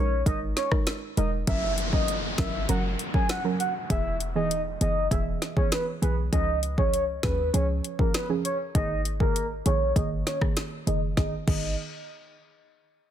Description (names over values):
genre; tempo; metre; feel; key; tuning
dancehall; 99 BPM; 4/4; straight; G# minor; A4 = 438 Hz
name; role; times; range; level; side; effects
soft octave-layered synth lead; melody; 0.0-11.8 s; A#4 to G#5; -30 LUFS; equal; chorus, phaser, low-pass filter, tape echo
soft round pluck; accompaniment; 0.0-11.7 s; D#3 to A#4; -31 LUFS; right 5 dB; chorus, low-pass filter
short 808-style bass; bass; 0.0-11.8 s; E1 to D#2; -28 LUFS; equal; none
afro-pop drum kit; drums; 0.3-11.6 s; crash cymbal, hi-hat, kick drum, rim click, snare drum; -27 LUFS; equal; none
downlifter; sound effects; 1.5-6.3 s; none; -35 LUFS; equal; none
room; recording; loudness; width
little or no reverb; dense, heavily limited modern master; -24 LUFS; side -10 dB against mid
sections
0.0-1.5 A section; 1.5-11.2 B section; 11.2-13.1 C section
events
filter sweep 1.5-11.2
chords
0.0 G#sus2; 1.5 F#; 3.9 E; 6.3 C#; 8.7 G#sus2; 11.2 G#m